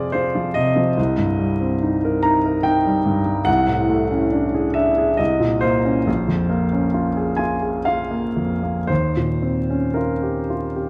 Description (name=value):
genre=classical, impressionist solo piano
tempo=55-75 BPM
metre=3/4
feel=rubato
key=unclear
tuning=A4 = 439 Hz
part: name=clear grand piano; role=solo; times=0.0-10.9 s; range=Bb1 to Bb5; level=-20 LUFS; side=equal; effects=none
room=moderate scoring stage reverb, RT60 1.9 s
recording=dark, warm production, vinyl crackle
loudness=-20 LUFS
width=mono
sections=0.0-10.9 A section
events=none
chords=0.0 Fm7; 1.0 Cm7; 3.5 Dmaj7#11/C; 5.2 Eb5/C; 6.1 Bbm7; 8.9 Eb13